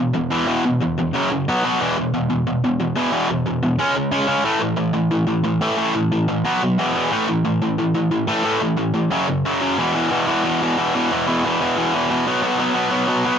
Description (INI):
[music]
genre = punk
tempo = 180 BPM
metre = 4/4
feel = straight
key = unclear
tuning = A4 = 440 Hz
[part]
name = distorted electric guitar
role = solo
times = 0.0-13.4 s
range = E2 to C#4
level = -17 LUFS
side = equal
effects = overdrive
[sound]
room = moderate studio reverb, RT60 0.6 s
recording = none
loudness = -17 LUFS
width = side -8 dB against mid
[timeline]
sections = 0.0-9.8 A section; 9.8-13.4 B section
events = none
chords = 0.0 E5; 1.1 F#5; 1.5 B5; 1.8 E5; 3.8 C#5; 4.5 A5; 6.5 B5; 6.8 E5; 7.1 A5; 9.1 F#5; 9.8 E5; 12.3 B5